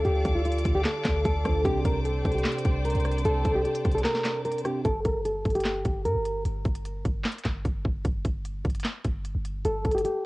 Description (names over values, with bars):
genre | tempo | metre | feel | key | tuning
hip hop, trap | 150 BPM | 4/4 | half-time | unclear | A4 = 436 Hz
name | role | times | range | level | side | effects
nylon-string guitar | melody | 0.0-6.4, 9.7-10.3 s | F4 to Bb4 | -28 LUFS | equal | low-pass filter
mellow tine electric piano | accompaniment | 0.0-4.9 s | C3 to C5 | -34 LUFS | right 2 dB | phaser, cassette tape
rich studio string section | sustained chords | 0.0-4.8 s | A4 to D6 | -36 LUFS | left 2 dB | cassette tape
clean 808-style bass | bass | 0.0-10.0 s | G1 to G2 | -29 LUFS | equal | none
trap drum kit | drums | 0.1-10.1 s | handclaps, hi-hat, kick drum, rim click, snare drum | -29 LUFS | equal | cassette tape
room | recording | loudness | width
little or no reverb | home recording on cassette, lossy compression artefacts | -24 LUFS | side -21 dB against mid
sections
0.0-4.8 A section; 4.8-10.3 B section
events
break 4.0-4.8, 6.5-9.7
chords
0.0 Dm; 1.6 Csus2; 4.8 N.C.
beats
| 0.05 0.45 0.85 1.25 | 1.65 2.05 2.45 2.85 | 3.25 3.65 4.05 4.45 | 4.85 5.25 5.65 6.05 | 6.45 6.85 7.25 7.65 | 8.05 8.45 8.85 9.25 | 9.65 10.05